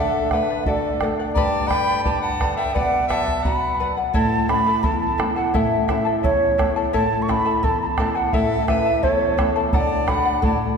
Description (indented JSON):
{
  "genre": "andean folk, Andean ensemble",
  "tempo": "86 BPM",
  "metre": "2/4",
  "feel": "straight",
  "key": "unclear",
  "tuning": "A4 = 442 Hz",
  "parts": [
    { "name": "mellow large quena", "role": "melody", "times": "0.0-10.6 s", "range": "C#5 to C#6", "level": "-22 LUFS", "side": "right 2 dB", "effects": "none" },
    { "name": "clear soprano saxophone", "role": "second line", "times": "0.0-4.0, 8.3-10.6 s", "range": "A4 to G5", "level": "-27 LUFS", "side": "left 5 dB", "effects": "none" },
    { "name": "charango", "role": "accompaniment", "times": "0.0-10.8 s", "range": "E4 to B5", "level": "-26 LUFS", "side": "left 4 dB", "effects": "none" },
    { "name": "flamenco guitar", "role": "accompaniment", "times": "0.0-10.8 s", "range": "E2 to G4", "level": "-25 LUFS", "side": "equal", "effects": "none" },
    { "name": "bombo", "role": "percussion", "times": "0.3-10.6 s", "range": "none", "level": "-25 LUFS", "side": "right 1 dB", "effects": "none" }
  ],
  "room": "wet concert hall reverb, RT60 2.5 s",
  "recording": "recorded in a church or concert hall",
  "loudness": "-18 LUFS",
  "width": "side -6 dB against mid",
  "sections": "0.0-4.1 A section; 4.1-10.8 A section",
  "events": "none",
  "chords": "0.0 D; 1.4 G; 2.8 Bm; 4.1 A; 9.7 D",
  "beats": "0.66 | 1.36 2.06 | 2.75 3.45 | 4.15 4.84 | 5.54 6.24 | 6.94 7.64 | 8.34 9.03 | 9.73 10.43"
}